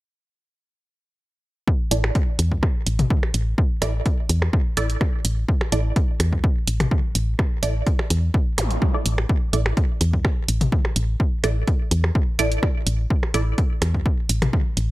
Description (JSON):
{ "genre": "minimal techno", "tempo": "126 BPM", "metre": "4/4", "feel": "straight", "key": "unclear", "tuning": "A4 = 440 Hz", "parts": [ { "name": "electronic kick drum", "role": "drums", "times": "1.7-14.6 s", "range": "none", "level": "-21 LUFS", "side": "equal", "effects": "none" }, { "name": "filtered dub chord stab", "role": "stabs", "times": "1.9-13.4 s", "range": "E4 to D5", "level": "-27 LUFS", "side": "right 4 dB", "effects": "phaser, digital delay" }, { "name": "woody FM bass", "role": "bass", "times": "1.9-14.9 s", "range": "A1 to E2", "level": "-21 LUFS", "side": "equal", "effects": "sidechain pumping" }, { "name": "electronic hi-hat", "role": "drums", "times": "1.9-14.9 s", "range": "none", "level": "-26 LUFS", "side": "right 2 dB", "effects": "none" }, { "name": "electronic percussion blips and toms", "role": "percussion", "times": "2.0-14.5 s", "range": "none", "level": "-27 LUFS", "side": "left 1 dB", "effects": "digital delay" }, { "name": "zap", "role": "sound effects", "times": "8.6-8.7 s", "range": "none", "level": "-29 LUFS", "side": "right 1 dB", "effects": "none" } ], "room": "digital ambience", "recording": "bright 1980s-style digital production", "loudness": "-19 LUFS", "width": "side -18 dB against mid", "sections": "1.7-14.9 A section", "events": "none", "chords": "1.7 Asus4" }